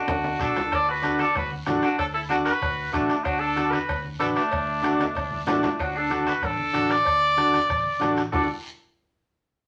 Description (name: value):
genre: latin, cumbia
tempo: 189 BPM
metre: 4/4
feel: straight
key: D major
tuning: A4 = 441 Hz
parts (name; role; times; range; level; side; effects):
- clear trumpet; melody; 0.0-8.5 s; D4 to D5; -27 LUFS; equal; none
- clean electric guitar; second line; 0.0-8.5 s; A3 to A4; -32 LUFS; equal; none
- fingered electric bass; bass; 0.1-8.5 s; A1 to D2; -40 LUFS; equal; none
- bombo; percussion; 0.1-8.4 s; none; -36 LUFS; equal; none
- congas; percussion; 0.1-8.4 s; none; -42 LUFS; equal; none
- cowbell and timbales; percussion; 0.1-8.4 s; none; -37 LUFS; equal; none
- guiro; percussion; 0.1-8.4 s; none; -46 LUFS; equal; none
- combo organ; accompaniment; 0.4-8.5 s; D4 to B4; -28 LUFS; equal; none
room: wet studio reverb, RT60 0.5 s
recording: none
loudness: -24 LUFS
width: mono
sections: 0.0-5.8 A section; 5.8-8.3 B section; 8.3-9.6 C section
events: drum fill 0.0-0.7, 5.0-5.8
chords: 0.0 D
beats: 0.08 0.40 | 0.72 1.03 1.35 1.67 | 1.99 2.30 2.62 2.94 | 3.26 3.57 3.89 4.21 | 4.52 4.84 5.16 5.48 | 5.79 6.11 6.43 6.74 | 7.06 7.38 7.70 8.01 | 8.33